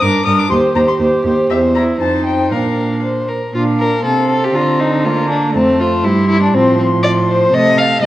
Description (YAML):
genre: quick classical-period movement for string quartet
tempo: 120 BPM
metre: 2/4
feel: straight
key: Bb major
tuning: A4 = 440 Hz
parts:
  - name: dark violin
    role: melody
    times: 0.0-8.0 s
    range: E5 to Eb6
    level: -22 LUFS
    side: left 4 dB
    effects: none
  - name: warm violin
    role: second line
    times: 0.0-8.1 s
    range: C4 to F5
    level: -15 LUFS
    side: left 2 dB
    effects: none
  - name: dark viola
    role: accompaniment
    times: 0.0-8.1 s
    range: F3 to G4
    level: -18 LUFS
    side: right 2 dB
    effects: none
  - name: rich cello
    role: bass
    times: 0.0-8.1 s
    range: Eb2 to D3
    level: -18 LUFS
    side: right 2 dB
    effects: none
room: wet recital hall reverb, RT60 1.5 s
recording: worn, warbling old tape, cassette tape, warbly pitch drift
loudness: -12 LUFS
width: side -14 dB against mid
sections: 0.0-3.5 A section; 3.5-8.1 A section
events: none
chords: 0.0 Gm; 0.5 Cm/Eb; 1.5 C/E; 2.0 F7; 2.5 Bb; 4.1 F/C; 4.6 Bb/D; 5.5 F; 6.0 C/G; 6.5 F/A; 7.5 Adim/C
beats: 0.02 | 0.51 1.00 | 1.50 2.00 | 2.52 3.03 | 3.55 4.05 | 4.55 5.05 | 5.55 6.04 | 6.54 7.04 | 7.53 8.03